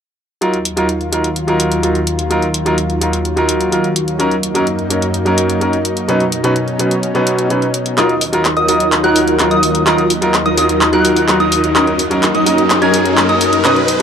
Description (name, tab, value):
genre	EDM, festival progressive house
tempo	127 BPM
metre	4/4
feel	straight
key	Eb minor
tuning	A4 = 444 Hz
part	bright concert grand piano	accompaniment	0.4-14.0 s	B2 to B4	-16 LUFS	equal	dub echo
part	lush unison pad	sustained chords	0.4-14.0 s	Eb2 to F4	-19 LUFS	left 1 dB	chorus
part	pop drum kit	drums	0.4-14.0 s	handclaps, hi-hat	-18 LUFS	equal	overdrive
part	plucky unison lead	arpeggios	8.0-13.9 s	Eb6 to Ab6	-18 LUFS	equal	dub echo
part	supersaw chords	riff	8.0-13.9 s	Gb3 to Ab5	-16 LUFS	right 1 dB	phaser, low-pass filter, dub echo
part	riser	sound effects	9.8-14.0 s	none	-24 LUFS	equal	none
room	moderate huge ambient reverb, RT60 6.5 s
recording	dark, warm production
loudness	-12 LUFS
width	side -7 dB against mid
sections	0.4-8.0 A section; 8.0-14.0 B section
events	filter sweep on analog synth pad 0.4-8.0, 8.0-14.0; build-up 8.0-14.0; drum fill 8.0-14.0; filter sweep on supersaw synth 8.0-14.0; riser 9.8-14.0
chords	0.4 Ebmadd9; 4.2 Gb6; 6.1 Badd9; 8.0 Ebmadd9; 11.8 Gb6